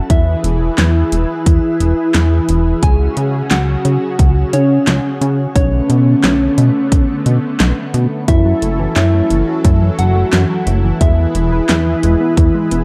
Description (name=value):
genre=synthwave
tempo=88 BPM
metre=4/4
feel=straight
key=unclear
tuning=A4 = 440 Hz
part: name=warm analog pad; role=sustained chords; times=0.0-12.8 s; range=C#3 to B4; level=-25 LUFS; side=equal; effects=chorus, sidechain pumping, shimmer reverb
part: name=soft octave-layered synth lead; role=melody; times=0.1-12.8 s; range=C#4 to G#4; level=-20 LUFS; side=equal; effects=chorus, digital delay
part: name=soft synth bell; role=second line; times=0.1-12.8 s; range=C#5 to G#5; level=-28 LUFS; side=equal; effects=chorus, shimmer reverb
part: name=chorused synth bass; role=bass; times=0.1-12.8 s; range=E1 to C#3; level=-16 LUFS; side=equal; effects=none
part: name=electronic kick drum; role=drums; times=0.1-12.5 s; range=none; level=-15 LUFS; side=equal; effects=overdrive
part: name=pop drum kit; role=drums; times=0.1-12.8 s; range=handclaps, hi-hat, snare drum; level=-21 LUFS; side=equal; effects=overdrive
part: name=soft round pluck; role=arpeggios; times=8.3-12.8 s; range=E3 to B4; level=-24 LUFS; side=equal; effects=chorus, cassette tape, digital delay
room=light reverb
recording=dark, warm production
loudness=-14 LUFS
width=mono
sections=0.0-12.8 A section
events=none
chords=0.1 E; 2.8 C#sus4; 5.6 Bm7; 8.3 F#m7; 11.0 E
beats=| 0.10 0.78 1.46 2.15 | 2.83 3.51 4.19 4.87 | 5.55 6.24 6.92 7.60 | 8.28 8.96 9.65 10.33 | 11.01 11.69 12.37